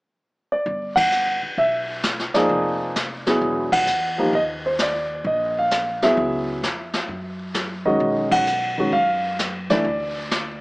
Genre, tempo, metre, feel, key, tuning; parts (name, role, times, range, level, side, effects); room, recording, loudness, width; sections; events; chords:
jazz piano trio; 131 BPM; 4/4; swing 67% on 8ths; A4 = 441 Hz
warm concert grand piano; melody; 0.5-10.6 s; Eb3 to F#5; -20 LUFS; equal; plate reverb
upright bass; bass; 0.7-10.6 s; E1 to F#2; -34 LUFS; equal
jazz brush drum kit; drums; 0.7-10.6 s; brushed snare drum, hi-hat, kick drum, ride cymbal, snare drum; -26 LUFS; equal
moderate studio reverb, RT60 0.7 s; small speaker sound; -19 LUFS; side -24 dB against mid
0.7-10.6 A section
band accent 0.9, 3.6, 8.2
0.0 N.C.; 0.7 G6; 2.5 Fm7; 3.4 Eadd9; 4.3 Eb5; 6.2 C#m7; 7.1 F#5; 8.0 B6; 9.8 N.C.